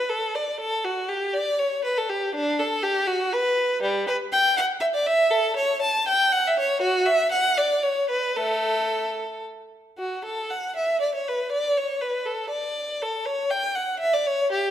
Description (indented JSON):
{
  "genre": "classical, baroque-style suite movement for unaccompanied violin",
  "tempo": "120 BPM",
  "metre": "3/4",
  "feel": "rubato",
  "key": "unclear",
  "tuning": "A4 = 442 Hz",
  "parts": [
    { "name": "rich violin", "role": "solo", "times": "0.0-14.7 s", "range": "G3 to A5", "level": "-22 LUFS", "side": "equal", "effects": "none" }
  ],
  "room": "wet recital hall reverb, RT60 1.5 s",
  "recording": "none",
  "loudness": "-21 LUFS",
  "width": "side -10 dB against mid",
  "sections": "0.0-10.0 A section; 10.0-14.7 B section",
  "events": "none",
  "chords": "none"
}